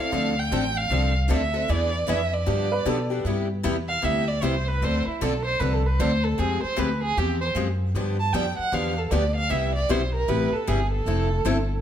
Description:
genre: acoustic string swing (jazz manouche)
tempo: 154 BPM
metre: 4/4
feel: swing 62% on 8ths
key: C major from 3.3 s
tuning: A4 = 441 Hz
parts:
  - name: rich violin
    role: melody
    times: 0.0-11.8 s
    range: E4 to A5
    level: -26 LUFS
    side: right 3 dB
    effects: none
  - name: picked steel-string acoustic guitar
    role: accompaniment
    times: 0.0-11.6 s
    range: C3 to A4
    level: -29 LUFS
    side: left 5 dB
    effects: none
  - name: picked steel-string acoustic guitar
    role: accompaniment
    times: 0.1-11.6 s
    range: C3 to B4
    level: -33 LUFS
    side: right 7 dB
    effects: none
  - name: upright bass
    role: bass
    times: 0.1-11.8 s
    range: F1 to B2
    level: -25 LUFS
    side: equal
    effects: none
  - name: felt-muted upright piano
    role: second line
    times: 2.7-3.2 s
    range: A4 to B4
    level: -30 LUFS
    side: right 4 dB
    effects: none
room: light reverb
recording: none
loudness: -22 LUFS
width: side -9 dB against mid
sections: 0.0-3.3 A section; 3.3-11.8 B section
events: violin solo 3.3-11.8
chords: 0.1 Dm7; 1.7 E7; 2.5 G9; 3.3 Cmaj9; 4.8 Dm7; 6.4 Fmadd9; 7.9 G7; 9.5 Cmaj7; 11.1 Fmaj7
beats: | 0.13 0.52 0.91 1.30 | 1.69 2.08 2.47 2.86 | 3.25 3.65 4.04 4.43 | 4.82 5.21 5.60 5.99 | 6.38 6.78 7.17 7.56 | 7.95 8.34 8.73 9.12 | 9.51 9.90 10.29 10.68 | 11.06 11.45

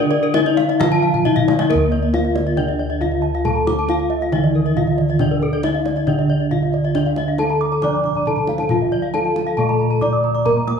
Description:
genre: Balinese gamelan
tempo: 137 BPM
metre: 4/4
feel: straight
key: D pelog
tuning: A4 = 440 Hz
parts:
  - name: gamelan-type bronze metallophone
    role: melody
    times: 0.0-10.8 s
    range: Bb3 to D5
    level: -21 LUFS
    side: left 2 dB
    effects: none
  - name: gamelan-type bronze metallophone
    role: accompaniment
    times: 0.0-10.8 s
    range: D3 to D4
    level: -25 LUFS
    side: right 3 dB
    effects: none
  - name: gamelan-type bronze metallophone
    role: arpeggios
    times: 0.0-10.8 s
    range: A4 to Eb6+35c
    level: -23 LUFS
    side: left 3 dB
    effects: none
  - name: gamelan-type bossed gongs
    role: bass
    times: 0.0-10.8 s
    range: D2 to Bb4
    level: -21 LUFS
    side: right 1 dB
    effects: none
  - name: kendang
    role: percussion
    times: 0.0-10.8 s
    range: none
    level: -27 LUFS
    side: left 3 dB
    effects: none
  - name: gamelan-type bronze metallophone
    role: arpeggios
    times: 0.1-10.7 s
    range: Bb4 to Eb6+35c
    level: -28 LUFS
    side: right 2 dB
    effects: none
room: wet large studio reverb, RT60 1.2 s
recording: band playing live in one room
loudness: -16 LUFS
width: side -6 dB against mid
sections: 0.0-1.7 A section; 1.7-10.8 B section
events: drum fill 1.1-1.7, 8.2-8.7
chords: none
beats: 0.34 0.80 1.25 | 1.69 2.13 2.57 3.01 | 3.45 3.88 4.32 4.76 | 5.20 5.64 6.08 6.51 | 6.95 7.39 7.83 8.27 | 8.71 9.14 9.58 10.02 | 10.46

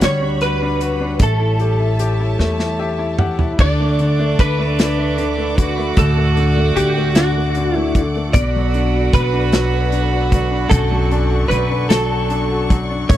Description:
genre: six-eight pop ballad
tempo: 50 BPM (dotted quarters)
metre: 6/8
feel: straight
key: B minor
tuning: A4 = 440 Hz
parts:
  - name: direct-recorded clean electric guitar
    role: melody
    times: 0.0-13.2 s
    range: F#4 to D5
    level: -22 LUFS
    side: equal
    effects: ensemble chorus
  - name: bright grand piano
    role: accompaniment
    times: 0.0-13.2 s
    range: F#2 to F#5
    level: -22 LUFS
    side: left 3 dB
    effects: none
  - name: rich studio string section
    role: sustained chords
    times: 0.0-13.2 s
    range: G3 to D6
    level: -29 LUFS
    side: left 1 dB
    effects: none
  - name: upright bass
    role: bass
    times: 0.0-13.2 s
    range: A1 to E2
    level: -19 LUFS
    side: equal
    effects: none
  - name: natural country drum kit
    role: drums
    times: 0.0-13.2 s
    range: crash cymbal, hi-hat, kick drum, snare drum, toms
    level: -16 LUFS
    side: equal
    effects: none
  - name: muted French horn section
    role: second line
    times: 3.5-13.2 s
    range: D4 to F#4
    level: -24 LUFS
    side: right 6 dB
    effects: none
room: little or no reverb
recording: dry, close 1970s-style studio recording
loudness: -14 LUFS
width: side -12 dB against mid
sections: 0.0-3.6 A section; 3.6-13.2 B section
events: drum fill 2.4-3.6; grand piano fill 2.4-3.6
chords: 0.0 Gmaj7; 1.2 A7; 3.6 D; 8.3 Bm7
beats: 0.01 | 1.20 2.39 | 3.59 4.79 | 5.97 7.16 | 8.34 9.53 | 10.71 11.90 | 13.10

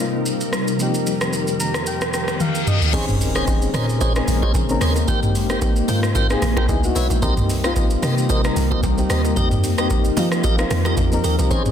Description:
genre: amapiano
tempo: 112 BPM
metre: 4/4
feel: swing 55% on 16ths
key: unclear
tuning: A4 = 435 Hz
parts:
  - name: soft electric-piano-like synth keys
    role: accompaniment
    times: 0.0-11.7 s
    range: F3 to Bb5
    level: -24 LUFS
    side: left 4 dB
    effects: chorus, tremolo
  - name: ethereal airy pad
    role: sustained chords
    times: 0.0-11.7 s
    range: F2 to Bb4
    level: -25 LUFS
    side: left 1 dB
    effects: ensemble chorus, built-in reverb, sidechain pumping
  - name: booming analog drum machine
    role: drums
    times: 0.3-11.7 s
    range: crash cymbal, hi-hat, kick drum, rim click, shaker, toms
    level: -21 LUFS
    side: equal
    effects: none
  - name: reverse cymbal and impact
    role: sound effects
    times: 2.2-5.1 s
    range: none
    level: -29 LUFS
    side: left 2 dB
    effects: none
  - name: tonewheel organ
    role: stabs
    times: 2.9-11.6 s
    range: G4 to G5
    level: -27 LUFS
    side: right 1 dB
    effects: overdrive, slow rotary speaker, ping-pong delay
  - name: deep log drum bass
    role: bass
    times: 2.9-11.7 s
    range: Ab1 to F3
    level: -22 LUFS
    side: equal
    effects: none
  - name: congas and bongos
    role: percussion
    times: 2.9-11.6 s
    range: none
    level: -32 LUFS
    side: right 8 dB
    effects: none
room: light reverb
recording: dense, heavily limited modern master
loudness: -17 LUFS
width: side -9 dB against mid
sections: 0.0-2.9 A section; 2.9-11.7 B section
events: synth keys fill 1.3-2.9; reverse cymbal 2.2-2.9; drum fill 2.4-2.9; impact 2.9-5.1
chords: 0.0 Cm7; 0.8 F9sus4; 2.9 Bbm11; 5.1 Abmaj9; 6.7 Dbm7; 7.2 Cm7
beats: 0.26 | 0.80 1.33 1.87 2.40 | 2.94 3.47 4.01 4.54 | 5.08 5.62 6.15 6.69 | 7.22 7.76 8.29 8.83 | 9.37 9.90 10.44 10.97 | 11.51

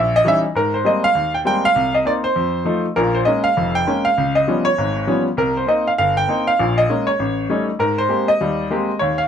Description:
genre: jazz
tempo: 199 BPM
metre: 4/4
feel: swing 61% on 8ths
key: Ab major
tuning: A4 = 440 Hz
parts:
  - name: clear baby grand piano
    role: solo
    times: 0.0-9.3 s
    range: F1 to G5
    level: -16 LUFS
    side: equal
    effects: none
room: light reverb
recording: none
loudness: -16 LUFS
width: side -8 dB against mid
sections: 0.5-9.3 A section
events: none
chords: 0.0 Eb7b9; 0.5 Abmaj9; 1.7 Cm7; 2.3 F7; 3.0 Bbm7; 4.2 Db7#11; 5.4 Cm7; 6.6 Bbm7; 7.2 A7#11; 7.8 Abmaj9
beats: 0.23 | 0.54 0.84 1.14 1.44 | 1.74 2.05 2.35 2.65 | 2.95 3.25 3.56 3.86 | 4.16 4.46 4.76 5.07 | 5.37 5.67 5.97 6.28 | 6.58 6.88 7.18 7.49 | 7.79 8.09 8.39 8.70 | 9.00

